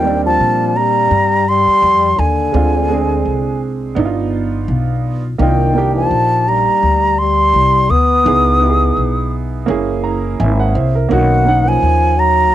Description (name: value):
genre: hip hop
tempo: 84 BPM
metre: 4/4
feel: swing 57% on 16ths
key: unclear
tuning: A4 = 440 Hz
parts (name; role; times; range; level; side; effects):
- silver concert flute; melody; 0.0-12.5 s; F#5 to Eb6; -14 LUFS; right 1 dB; cassette tape
- breathy trombone; second line; 0.0-12.5 s; D3 to Cb4; -19 LUFS; left 8 dB; cassette tape
- warm grand piano; accompaniment; 0.0-12.5 s; G3 to Bb5; -19 LUFS; right 7 dB; cassette tape
- upright bass; bass; 0.0-12.5 s; Gb1 to Bb2; -17 LUFS; left 1 dB; none
room: light reverb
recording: home recording on cassette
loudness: -12 LUFS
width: side -12 dB against mid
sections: 0.0-12.5 A section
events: grand piano fill 9.7-11.1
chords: 0.0 Eb6; 2.5 Dm7b5; 4.0 G7b13; 5.4 Cm9; 8.3 Dbm9; 9.7 Gb9; 11.1 Bmaj7